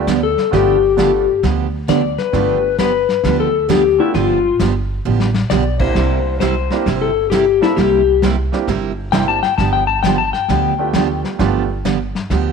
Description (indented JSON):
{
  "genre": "country, western swing",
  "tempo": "132 BPM",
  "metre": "4/4",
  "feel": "swing 66% on 8ths",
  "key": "G mixolydian",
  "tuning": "A4 = 440 Hz",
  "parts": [
    { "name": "clean lap steel guitar", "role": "second line", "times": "0.0-11.2 s", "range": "E4 to A5", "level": "-16 LUFS", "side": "left 10 dB", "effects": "none" },
    { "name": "clear upright piano", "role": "accompaniment", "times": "0.0-11.7 s", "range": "A3 to A4", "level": "-23 LUFS", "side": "right 12 dB", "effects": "none" },
    { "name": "upright bass", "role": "bass", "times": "0.0-12.5 s", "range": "G1 to D2", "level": "-21 LUFS", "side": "right 1 dB", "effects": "none" },
    { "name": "picked steel-string acoustic guitar", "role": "accompaniment", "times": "0.1-12.5 s", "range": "C3 to G4", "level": "-20 LUFS", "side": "right 12 dB", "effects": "none" },
    { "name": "vintage brush drum kit", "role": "drums", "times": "0.1-12.5 s", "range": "brushed snare drum, crash cymbal, hi-hat, kick drum, snare drum", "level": "-23 LUFS", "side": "left 5 dB", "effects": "none" }
  ],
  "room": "moderate echo chamber reverb, RT60 1.4 s, studio ambience",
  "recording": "1960s-style stereo with parts hard left and right",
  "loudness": "-13 LUFS",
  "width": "side -5 dB against mid",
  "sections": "0.0-12.5 A section",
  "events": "electric slide guitar solo 0.0-12.5; drum fill 5.1-5.5",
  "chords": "0.0 G9; 6.0 C9; 9.6 G9",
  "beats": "0.07 | 0.52 0.98 1.43 1.88 | 2.33 2.79 3.24 3.69 | 4.14 4.60 5.05 5.50 | 5.96 6.41 6.86 7.32 | 7.77 8.22 8.68 9.13 | 9.58 10.04 10.49 10.94 | 11.40 11.85 12.30"
}